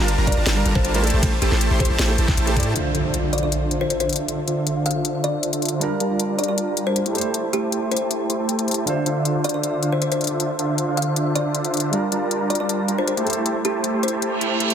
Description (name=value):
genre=future bass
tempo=157 BPM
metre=4/4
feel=half-time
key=D minor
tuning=A4 = 444 Hz
part: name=dark concert grand piano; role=accompaniment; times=0.0-14.7 s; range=D3 to D5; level=-29 LUFS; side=right 4 dB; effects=sidechain pumping, digital delay
part: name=supersaw chords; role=riff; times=0.0-14.7 s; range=D3 to C6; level=-22 LUFS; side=equal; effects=cassette tape, sidechain pumping, low-pass filter
part: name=long sustained 808-style bass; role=bass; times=0.0-2.7 s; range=G1 to A2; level=-20 LUFS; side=equal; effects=sidechain pumping
part: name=trap drum kit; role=drums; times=0.1-14.7 s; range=hi-hat, ride cymbal, snare drum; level=-25 LUFS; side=left 4 dB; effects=none
part: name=kalimba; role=melody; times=0.3-14.4 s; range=G4 to F5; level=-28 LUFS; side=left 2 dB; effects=sidechain pumping, ping-pong delay
part: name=electronic kick drum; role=drums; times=0.3-2.6 s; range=none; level=-22 LUFS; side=equal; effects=overdrive
part: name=impact and reverse cymbal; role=sound effects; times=2.8-4.3, 14.3-14.7 s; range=none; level=-26 LUFS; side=right 1 dB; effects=none
room=light reverb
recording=dense, heavily limited modern master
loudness=-19 LUFS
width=side -8 dB against mid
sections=0.0-2.8 A section; 2.8-14.7 B section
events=drop 0.0-2.8; impact 2.8-4.3; reverse cymbal 14.3-14.7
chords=0.0 Gm7; 1.0 Am7; 2.8 Dm7; 5.8 Gm7; 7.2 Am7; 8.9 Dm7; 11.9 Gm7; 13.3 Am7